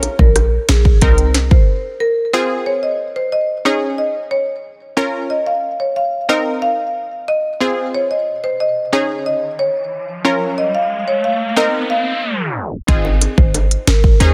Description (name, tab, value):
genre	dancehall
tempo	91 BPM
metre	4/4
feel	straight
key	Ab major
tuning	A4 = 436 Hz
part	analog pluck	accompaniment	0.0-14.3 s	C4 to Bb4	-22 LUFS	equal	chorus
part	short 808-style bass	bass	0.0-1.5, 12.9-14.3 s	Ab1 to Eb2	-17 LUFS	equal	none
part	afro-pop drum kit	drums	0.0-1.7, 12.9-14.3 s	hi-hat, kick drum, rim click, snare drum	-15 LUFS	equal	soft clipping on snare
part	bongos	percussion	0.0-0.8, 13.0-13.7 s	none	-28 LUFS	equal	none
part	marimba with medium mallets	melody	0.2-14.3 s	Ab4 to F5	-21 LUFS	equal	digital delay
part	riser	sound effects	9.3-12.9 s	none	-28 LUFS	equal	none
room	light reverb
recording	dense, heavily limited modern master, tape stop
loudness	-17 LUFS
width	mono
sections	0.0-2.3 A section; 2.3-12.9 B section; 12.9-14.3 A section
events	break 1.7-2.3; riser 9.3-12.9; tape stop 12.2-12.9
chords	0.0 Bbm; 1.0 Cm7; 2.3 Ab6; 3.7 Eb7sus4; 5.0 Bbm; 6.3 Cm7; 7.6 Ab6; 8.9 Eb7sus4; 10.2 Bbm; 11.6 Cm7; 12.9 Ab6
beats	0.36 1.02 1.68 | 2.34 3.00 3.65 4.32 | 4.97 5.63 6.29 6.95 | 7.61 8.27 8.93 9.59 | 10.25 10.91 11.57 12.23 | 12.89 13.54 14.21